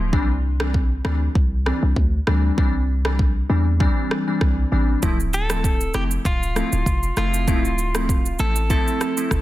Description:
afrobeats; 98 BPM; 4/4; swing 55% on 16ths; D minor; A4 = 439 Hz
glassy digital keys; accompaniment; 0.0-9.4 s; E3 to E4; -25 LUFS; left 1 dB; chorus
warm 808-style bass; bass; 0.0-9.4 s; D1 to E2; -21 LUFS; equal
afro-pop drum kit; drums; 0.1-9.4 s; kick drum, rim click, shaker; -22 LUFS; equal; soft clipping on snare
direct-recorded clean electric guitar; melody; 5.3-9.4 s; F4 to A4; -27 LUFS; equal; ping-pong delay
digital ambience; dense, heavily limited modern master; -18 LUFS; side -15 dB against mid
0.0-9.4 A section
break 0.0-5.0
0.1 Cadd9; 5.0 Dm7

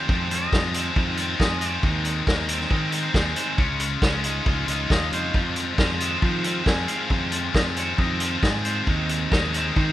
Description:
indie rock; 137 BPM; 4/4; straight; F minor; A4 = 441 Hz
twangy electric guitar; melody; 0.0-9.9 s; Ab4 to Ab5; -33 LUFS; left 1 dB; analog delay
biting overdriven guitar; riff; 0.0-9.9 s; F2 to Ab4; -28 LUFS; right 6 dB; lush chorus
high-gain distorted guitar; riff; 0.0-9.9 s; Db3 to F4; -27 LUFS; left 9 dB; distortion
growling fingered electric bass; bass; 0.1-9.9 s; Db2 to F3; -28 LUFS; equal; overdrive
vintage drum kit; drums; 0.1-9.9 s; hi-hat, kick drum, snare drum; -24 LUFS; equal
small room ambience; rough home demo mix; -20 LUFS; side -13 dB against mid
0.0-9.9 A section
0.0 Fm7; 1.8 Ab/Eb; 3.6 Dbadd9; 5.3 Fm7; 8.9 Ab/Eb

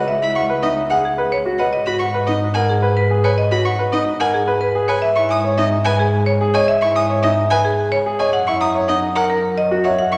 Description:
classical, minimalist pattern music; 109 BPM; 3/4; straight; G# minor; A4 = 438 Hz
marimba with medium hard mallets; melody; 0.0-10.2 s; G#4 to A#5; -21 LUFS; equal
bright grand piano; arpeggios; 0.0-10.2 s; D#4 to C#5; -23 LUFS; equal
clear violin; arpeggios; 0.0-10.2 s; D#5 to D#6; -26 LUFS; equal
rich symphonic double bass section; bass; 0.0-10.2 s; C#2 to G#2; -25 LUFS; equal
wet scoring stage reverb, RT60 1.5 s; -17 LUFS; mono
0.0-10.2 A section
0.0 C#m9; 1.7 G#m7; 5.0 Emaj7/G#; 8.3 F#

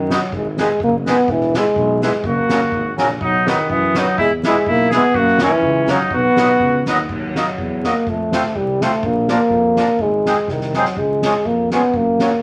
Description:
alpine folk, alpine dance band; 124 BPM; 2/4; swing 53% on 8ths, rubato; B major, Eb minor from 7.1 s; A4 = 440 Hz
warm euphonium; melody; 0.0-12.4 s; D#3 to B3; -19 LUFS; equal
mellow tuba; bass; 0.0-12.2 s; E1 to F#2; -27 LUFS; equal
accordion; accompaniment; 0.1-12.3 s; C#3 to D#4; -22 LUFS; equal
soft-mallet drum kit; drums; 0.1-12.3 s; crash cymbal, hi-hat, kick drum, snare drum; -27 LUFS; equal
clear trumpet; second line; 2.3-6.8 s; B3 to G#4; -22 LUFS; equal
moderate studio reverb, RT60 0.5 s; vinyl crackle; -17 LUFS; mono
0.0-7.1 A section; 7.1-12.4 B section
drum fill 10.5-11.0
0.3 G#m; 1.3 E; 2.2 F#add9; 3.2 B; 4.2 E; 5.2 F#7; 6.1 B; 7.1 Ebm; 8.1 F; 9.0 Bb; 10.0 Ab; 11.0 Db

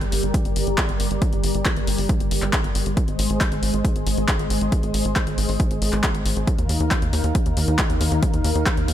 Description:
uplifting trance; 137 BPM; 4/4; straight; A4 = 443 Hz
analog string pad; sustained chords; 0.0-8.9 s; Eb3 to F5; -25 LUFS; equal; ensemble chorus, sidechain pumping
tight sequencer bass; bass; 0.0-8.9 s; G1 to Eb2; -24 LUFS; equal; sidechain pumping
punchy analog drum machine; drums; 0.0-8.9 s; handclaps, hi-hat; -26 LUFS; left 1 dB; overdrive
electronic kick drum; drums; 0.3-8.8 s; -22 LUFS; equal; overdrive
digital ambience; -19 LUFS; side -11 dB against mid
0.0-8.9 A section
filter sweep on analog synth pad 0.0-8.9
0.0 Gm; 3.0 Ab; 6.5 Ebsus2

